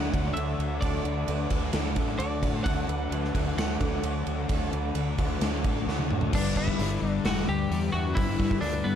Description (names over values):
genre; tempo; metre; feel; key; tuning
rock, shoegaze and dream pop; 131 BPM; 4/4; straight; G major; A4 = 440 Hz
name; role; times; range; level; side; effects
twelve-string electric guitar; melody; 0.0-9.0 s; B3 to F#5; -34 LUFS; equal; digital delay
lush unison pad; sustained chords; 0.0-9.0 s; A4 to E6; -42 LUFS; equal; chorus
thick fuzz guitar; riff; 0.0-9.0 s; G2 to D4; -31 LUFS; left 10 dB; distortion, ensemble chorus
twangy electric guitar; riff; 0.0-6.3 s; D3 to D4; -35 LUFS; right 10 dB; reverse reverb
growling fingered electric bass; bass; 0.0-9.0 s; E1 to A2; -31 LUFS; right 1 dB; overdrive
picked twelve-string acoustic guitar; arpeggios; 0.1-9.0 s; F#4 to B4; -41 LUFS; right 11 dB; lush chorus, digital delay
gated 80s drum kit; drums; 0.1-8.7 s; crash cymbal, hi-hat, kick drum, ride cymbal, snare drum, toms; -30 LUFS; right 1 dB; none
room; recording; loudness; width
small room ambience; dark, warm production; -25 LUFS; side -9 dB against mid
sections
0.0-6.3 A section; 6.3-9.0 B section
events
drum fill 5.9-6.3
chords
0.0 D; 6.3 G